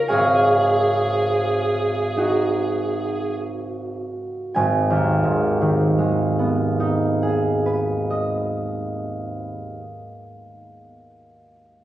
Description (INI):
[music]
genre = classical, impressionist duo for viola and harp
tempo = 24-31 BPM (dotted quarters)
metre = 6/8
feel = rubato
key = G# dorian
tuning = A4 = 440 Hz
[part]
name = warm viola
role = melody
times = 0.0-3.3 s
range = G#4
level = -22 LUFS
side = right 1 dB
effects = none
[part]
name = concert harp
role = accompaniment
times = 0.0-10.8 s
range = G#1 to G#5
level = -20 LUFS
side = right 1 dB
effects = none
[sound]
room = wet recital hall reverb, RT60 1.6 s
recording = recorded on a phone in the room, studio reverb, compression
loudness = -18 LUFS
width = side -13 dB against mid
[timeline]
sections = 0.0-4.5 A section; 4.5-9.3 B section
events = slowing down 0.0-4.5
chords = 0.1 G#m9; 4.5 G#m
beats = | 0.09 2.16 | 4.54 6.91